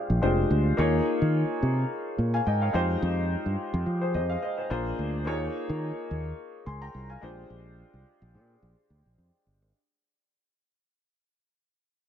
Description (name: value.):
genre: polished 1980s jazz-funk pop.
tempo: 107 BPM.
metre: 4/4.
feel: swing 54% on 16ths.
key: unclear.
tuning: A4 = 439 Hz.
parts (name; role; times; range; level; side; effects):
clear concert grand piano; accompaniment; 0.0-9.8 s; Ab3 to C6; -29 LUFS; left 2 dB; lush chorus.
fingered electric bass; bass; 0.1-9.7 s; F1 to F3; -27 LUFS; equal; none.
room: small room ambience.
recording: none.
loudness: -25 LUFS.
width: side -9 dB against mid.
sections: 0.8-9.7 A section.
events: fade-out 0.8-9.7.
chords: 0.0 Bb13; 0.8 Eb9sus4; 2.7 Fm9; 4.7 Bb7; 5.3 Eb9sus4; 7.2 Bb13.